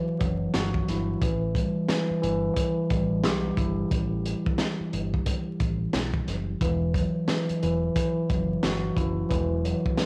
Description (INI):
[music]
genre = hip hop, boom-bap hip-hop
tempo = 89 BPM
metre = 4/4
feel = swing 61% on 16ths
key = E minor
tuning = A4 = 442 Hz
[part]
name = tine electric piano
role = accompaniment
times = 0.0-10.1 s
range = E3 to G4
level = -30 LUFS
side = equal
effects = high-pass filter, low-pass filter
[part]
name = deep dub fingered electric bass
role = bass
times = 0.2-9.7 s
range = E1 to B1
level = -32 LUFS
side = equal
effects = none
[part]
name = crunchy breakbeat drum kit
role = drums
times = 0.2-10.1 s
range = hi-hat, kick drum, snare drum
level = -31 LUFS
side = equal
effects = none
[sound]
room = light reverb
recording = dry, gritty hardware recording, vinyl crackle, small room ambience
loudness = -27 LUFS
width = mono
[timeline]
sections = 0.0-10.1 A section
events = break 3.9-6.6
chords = 0.0 Emadd9; 1.2 A5; 6.6 Esus2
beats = 0.54 | 1.22 1.89 2.56 3.24 | 3.91 4.59 5.26 5.94 | 6.61 7.28 7.96 8.63 | 9.31 9.98